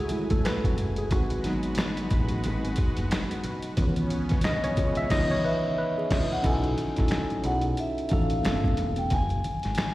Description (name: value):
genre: R&B, neo-soul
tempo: 90 BPM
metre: 4/4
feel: swing 59% on 16ths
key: C# minor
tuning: A4 = 440 Hz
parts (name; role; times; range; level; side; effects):
- tine electric piano; accompaniment; 0.0-9.1 s; D#3 to E5; -29 LUFS; equal; slapback echo
- lush unison pad; sustained chords; 0.0-6.4 s; C#3 to G#5; -37 LUFS; equal; chorus
- woody fretless electric bass; bass; 0.0-9.8 s; E1 to C#2; -29 LUFS; equal; none
- boom bap sampler-style drum kit; drums; 0.1-9.9 s; crash cymbal, finger snaps, hi-hat, kick drum, snare drum; -28 LUFS; equal; none
- congas; percussion; 0.1-9.9 s; none; -39 LUFS; left 1 dB; none
- vibraphone with medium mallets; melody; 5.5-9.9 s; E5 to G#5; -31 LUFS; equal; slapback echo
room: little or no reverb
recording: live gig heard through the venue's PA, recital hall reverb, vinyl crackle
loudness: -24 LUFS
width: side -17 dB against mid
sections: 0.0-6.4 A section; 6.4-9.9 B section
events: tine electric piano solo 0.0-6.4; band accent 5.1-6.4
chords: 0.0 F#m9; 1.1 G#m7; 3.8 C#m9; 6.4 B9sus4; 8.4 Gm9; 9.1 F#sus2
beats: 0.44 | 1.11 1.78 2.44 3.11 | 3.78 4.44 5.11 5.78 | 6.44 7.11 7.78 8.44 | 9.11 9.78